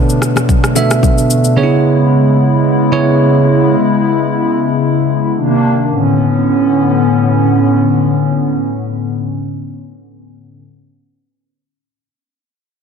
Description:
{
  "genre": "amapiano",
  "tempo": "free time",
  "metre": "none",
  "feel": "none",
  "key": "B dorian",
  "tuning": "A4 = 440 Hz",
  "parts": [
    { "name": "bell-like tine electric piano", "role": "accompaniment", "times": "0.0-3.8 s", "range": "B2 to E5", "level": "-11 LUFS", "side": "right 3 dB", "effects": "none" },
    { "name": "hollow soft pad", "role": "sustained chords", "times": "0.0-10.6 s", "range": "A2 to E4", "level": "-13 LUFS", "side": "left 2 dB", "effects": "chorus, sidechain pumping" },
    { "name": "afro-pop drum kit", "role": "drums", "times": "0.1-1.6 s", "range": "kick drum, rim click, shaker", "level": "-14 LUFS", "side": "equal", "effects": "soft clipping on snare" },
    { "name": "bongos and congas", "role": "percussion", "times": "0.2-1.2 s", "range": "none", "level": "-22 LUFS", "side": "left 13 dB", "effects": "none" }
  ],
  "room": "light reverb",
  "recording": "dense, heavily limited modern master",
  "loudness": "-10 LUFS",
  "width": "side -6 dB against mid",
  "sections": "0.0-5.9 A section; 5.9-10.2 B section",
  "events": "none",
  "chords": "0.0 Bm9; 1.6 C#m7; 5.4 Cm9; 5.9 Bm9",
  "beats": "free time"
}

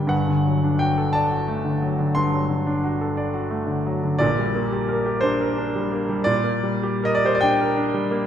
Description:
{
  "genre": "classical, romantic nocturne for solo piano",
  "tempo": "48-61 BPM (dotted quarters)",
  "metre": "12/8",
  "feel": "rubato",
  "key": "unclear",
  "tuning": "A4 = 440 Hz",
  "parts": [
    { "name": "bright concert grand piano", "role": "solo", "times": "0.0-8.3 s", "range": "G1 to C6", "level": "-19 LUFS", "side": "equal", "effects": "none" }
  ],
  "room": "wet scoring stage reverb, RT60 1.8 s",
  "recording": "heard from further back in the room",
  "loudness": "-19 LUFS",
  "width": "side -9 dB against mid",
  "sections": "0.0-8.3 A section",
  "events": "none",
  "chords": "0.1 D7/G; 4.2 Gm/Bb",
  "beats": "| 0.12 1.15 2.17 3.19 | 4.21 5.24 6.27 7.45"
}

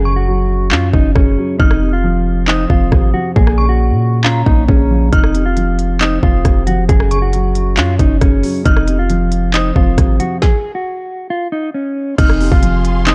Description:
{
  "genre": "hip hop, trap",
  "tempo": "136 BPM",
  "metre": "4/4",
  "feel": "half-time",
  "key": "F phrygian",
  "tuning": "A4 = 440 Hz",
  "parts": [
    { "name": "mellow electric guitar", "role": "melody", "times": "0.0-13.1 s", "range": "Db4 to Ab4", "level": "-22 LUFS", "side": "equal", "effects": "low-pass filter, tape echo" },
    { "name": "dark grand piano", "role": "accompaniment", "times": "0.0-13.1 s", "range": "F2 to Db4", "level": "-21 LUFS", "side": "equal", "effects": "low-pass filter" },
    { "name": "warm 808-style bass", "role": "bass", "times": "0.0-13.1 s", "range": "F1 to Bb2", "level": "-17 LUFS", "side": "equal", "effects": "none" },
    { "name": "dark detuned synth bell", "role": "second line", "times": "0.1-13.1 s", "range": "Bb5 to F6", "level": "-26 LUFS", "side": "equal", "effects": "chorus, tremolo, tape echo" },
    { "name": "trap drum kit", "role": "drums", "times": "0.7-13.1 s", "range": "crash cymbal, handclaps, hi-hat, kick drum, rim click, snare drum", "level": "-16 LUFS", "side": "equal", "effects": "vintage 12-bit sampler grit" },
    { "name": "warm symphonic string section", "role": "sustained chords", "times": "12.2-13.1 s", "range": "Ab4 to C6", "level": "-30 LUFS", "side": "equal", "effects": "none" }
  ],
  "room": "little or no reverb",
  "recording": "dark, warm production",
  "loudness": "-14 LUFS",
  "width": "mono",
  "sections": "0.0-12.2 A section",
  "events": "break 0.0-5.1; stop 10.4-12.2",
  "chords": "0.0 Gb5; 1.6 Fm; 3.4 Bbm; 5.1 F5; 6.9 Gb5; 8.7 Fm; 10.4 N.C.; 12.2 Fm",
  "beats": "0.27 0.71 1.16 | 1.60 2.04 2.48 2.92 | 3.36 3.80 4.24 4.68 | 5.13 5.57 6.01 6.45 | 6.89 7.33 7.77 8.21 | 8.65 9.10 9.54 9.98 | 10.42 10.86 11.30 11.74 | 12.19 12.63 13.07"
}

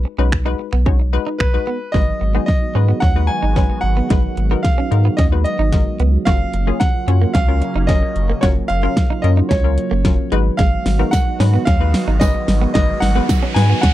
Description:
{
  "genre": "dance-pop",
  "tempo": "111 BPM",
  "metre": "4/4",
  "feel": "straight",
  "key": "G# dorian",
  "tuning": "A4 = 437 Hz",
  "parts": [
    { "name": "hollow square pluck", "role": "accompaniment", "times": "0.0-13.8 s", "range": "F#3 to C#5", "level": "-26 LUFS", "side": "left 16 dB", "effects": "chorus, sidechain pumping" },
    { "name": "warm sub bass", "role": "bass", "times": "0.0-13.9 s", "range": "F#1 to G#2", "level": "-16 LUFS", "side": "equal", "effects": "sidechain pumping" },
    { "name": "direct-recorded clean electric guitar", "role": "riff", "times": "0.1-13.9 s", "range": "G#3 to F#4", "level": "-25 LUFS", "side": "right 6 dB", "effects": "lush chorus" },
    { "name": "pop drum kit", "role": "drums", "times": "0.3-13.9 s", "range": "finger snaps, hi-hat, kick drum, snare drum", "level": "-17 LUFS", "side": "equal", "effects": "none" },
    { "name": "clear concert grand piano", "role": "melody", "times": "1.4-13.9 s", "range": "B4 to G#5", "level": "-23 LUFS", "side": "right 1 dB", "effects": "tape echo" },
    { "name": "sweeping resonant pad", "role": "sustained chords", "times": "2.2-13.9 s", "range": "C#3 to F#4", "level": "-29 LUFS", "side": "equal", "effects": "chorus, sidechain pumping" },
    { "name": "handpan", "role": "arpeggios", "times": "1.9-13.8 s", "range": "F#3 to F#4", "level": "-28 LUFS", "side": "right 10 dB", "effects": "sidechain pumping, tape echo" },
    { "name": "riser", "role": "sound effects", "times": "11.9-13.9 s", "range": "none", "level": "-30 LUFS", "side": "right 1 dB", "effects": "none" },
    { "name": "tambourine", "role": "percussion", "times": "11.1-13.4 s", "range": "none", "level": "-34 LUFS", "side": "right 21 dB", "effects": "none" }
  ],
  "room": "little or no reverb",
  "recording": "dry, close 1970s-style studio recording",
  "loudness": "-14 LUFS",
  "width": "side -14 dB against mid",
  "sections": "0.0-1.9 A section; 1.9-13.9 B section",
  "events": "build-up 1.9-13.9; drum fill 1.9-13.9; riser 11.9-13.9",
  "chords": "0.0 B6; 1.9 G#m7; 6.3 F#maj7; 10.3 G#m7",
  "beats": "0.32 0.86 1.40 | 1.94 2.48 3.02 3.56 | 4.11 4.65 5.19 5.73 | 6.27 6.81 7.35 7.89 | 8.43 8.97 9.51 10.05 | 10.59 11.13 11.67 12.21 | 12.75 13.29 13.84"
}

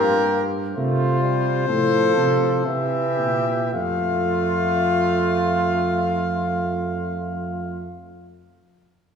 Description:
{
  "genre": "classical, imitative canzona for brass ensemble",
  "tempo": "53-71 BPM",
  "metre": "3/4",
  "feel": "straight",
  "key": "F major",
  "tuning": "A4 = 443 Hz",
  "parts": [
    { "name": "mellow trumpet", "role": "melody", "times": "0.0-7.9 s", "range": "Bb4 to F5", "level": "-24 LUFS", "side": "left 4 dB", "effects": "none" },
    { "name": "mellow flugelhorn", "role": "second line", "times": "0.0-7.9 s", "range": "F4 to A4", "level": "-25 LUFS", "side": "right 2 dB", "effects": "none" },
    { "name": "clear trombone", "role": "accompaniment", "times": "0.0-7.9 s", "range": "E3 to Bb3", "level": "-26 LUFS", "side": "right 2 dB", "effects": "none" },
    { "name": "mellow tuba", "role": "bass", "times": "0.0-7.9 s", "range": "F2 to C3", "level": "-25 LUFS", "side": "right 1 dB", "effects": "none" }
  ],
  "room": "wet scoring stage reverb, RT60 1.9 s",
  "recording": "recorded in a church or concert hall",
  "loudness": "-19 LUFS",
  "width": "side -7 dB against mid",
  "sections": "0.0-3.7 A section; 3.7-7.1 B section",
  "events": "slowing down 0.0-3.7",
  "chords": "0.0 Gm; 0.8 F/C; 2.7 C; 3.7 F",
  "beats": "| 0.77 1.69 2.67 | 3.75 4.87 6.01"
}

